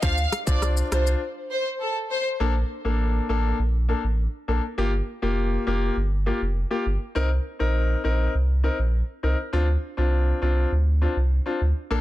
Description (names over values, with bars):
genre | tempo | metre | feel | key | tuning
dancehall | 101 BPM | 4/4 | straight | unclear | A4 = 442 Hz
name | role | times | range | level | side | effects
warm symphonic violin section | melody | 0.0-2.2 s | A4 to F5 | -27 LUFS | equal | tape echo
bright concert grand piano | accompaniment | 0.0-12.0 s | Bb3 to C5 | -27 LUFS | left 3 dB | none
warm sub bass | bass | 0.0-12.0 s | F1 to D2 | -22 LUFS | equal | none
island pop drum kit | drums | 0.0-1.2 s | hi-hat, kick drum, rim click, shaker | -26 LUFS | equal | overdrive
room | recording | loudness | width
digital ambience | dense, heavily limited modern master | -22 LUFS | side -15 dB against mid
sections
0.0-2.4 A section; 2.4-12.0 B section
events
break 1.2-2.4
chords
0.0 Dm7; 2.4 Bbmaj7; 4.8 Gm7; 7.2 Cm7; 9.5 Dm7